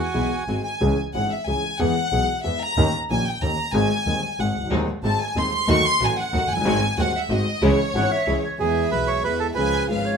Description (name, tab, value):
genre	tango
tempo	185 BPM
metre	3/4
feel	rubato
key	C# harmonic minor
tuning	A4 = 440 Hz
part	bandoneon	melody	0.0-0.4, 8.6-9.9 s	F#4 to C#5	-25 LUFS	right 6 dB	none
part	warm chamber violin section	second line	0.0-10.2 s	C#5 to C#6	-24 LUFS	left 1 dB	none
part	warm concert grand piano	accompaniment	0.1-10.2 s	B#0 to G#4	-24 LUFS	left 1 dB	none
part	clear symphonic string section	stabs	0.1-0.6, 4.7-10.2 s	G#3 to F#4	-31 LUFS	right 1 dB	none
part	warm double bass	bass	0.2-10.2 s	F#1 to E2	-26 LUFS	right 1 dB	none
part	mellow concert flute	second line	7.9-10.2 s	B4 to F#5	-26 LUFS	left 1 dB	none
room	moderate studio reverb, RT60 0.9 s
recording	minimal, uncompressed stereo recording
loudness	-19 LUFS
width	side -6 dB against mid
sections	0.8-8.6 A section; 8.6-10.2 B section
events	violin section solo 0.8-8.6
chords	0.5 G#7; 0.8 C#m; 1.8 E; 2.8 D#7; 3.7 G#; 5.7 D#dim; 6.7 G#7; 7.6 C#m; 8.6 E; 9.6 C#